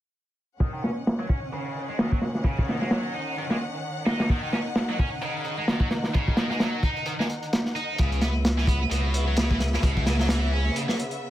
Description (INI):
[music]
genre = breakbeat, breaks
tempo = 130 BPM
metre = 4/4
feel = swing 56% on 16ths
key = Eb phrygian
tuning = A4 = 438 Hz
[part]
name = rich studio string section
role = sustained chords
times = 0.6-11.3 s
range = Db3 to Gb5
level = -33 LUFS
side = equal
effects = sidechain pumping
[part]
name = heavy high-gain guitar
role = riff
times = 0.6-10.9 s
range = Cb3 to Eb4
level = -31 LUFS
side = equal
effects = distortion, tube saturation, low-pass filter, ping-pong delay
[part]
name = crunchy breakbeat drum kit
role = drums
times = 0.6-11.2 s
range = hi-hat, kick drum, snare drum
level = -25 LUFS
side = equal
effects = low-pass filter on kick, low-pass filter on hats, low-pass filter on snare, low-pass filter on room
[part]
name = saturated sub bass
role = bass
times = 8.0-10.7 s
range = Db2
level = -25 LUFS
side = equal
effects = none
[part]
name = congas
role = percussion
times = 8.2-10.7 s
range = none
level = -34 LUFS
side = right 2 dB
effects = none
[sound]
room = light reverb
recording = none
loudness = -23 LUFS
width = side -13 dB against mid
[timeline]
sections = 0.6-11.3 A section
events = filter sweep on drum 0.6-11.3; filter sweep on distorted electric guitar 0.6-11.3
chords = 0.6 Ebm7; 8.0 Dbm7